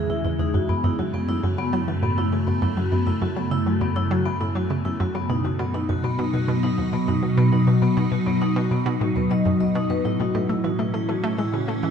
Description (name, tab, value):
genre	ambient, sequencer-driven space music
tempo	101 BPM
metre	4/4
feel	straight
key	unclear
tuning	A4 = 440 Hz
part	evolving wavetable pad	sustained chords	0.0-11.9 s	E2 to D#4	-23 LUFS	equal	ensemble chorus, built-in reverb, phaser
part	vibraphone with soft mallets	arpeggios	0.0-11.9 s	B3 to D#5	-26 LUFS	left 2 dB	auto-pan, ping-pong delay
part	analog pluck	riff	0.1-11.9 s	D#2 to A3	-26 LUFS	equal	chorus, vintage 12-bit sampler grit, ping-pong delay
room	wet echo chamber reverb, RT60 2.4 s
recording	echo-heavy mix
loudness	-20 LUFS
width	side -7 dB against mid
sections	0.0-11.9 A section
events	filter sweep on synth arpeggio sound 0.0-11.9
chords	0.0 E; 0.5 F#m; 5.3 B; 10.0 A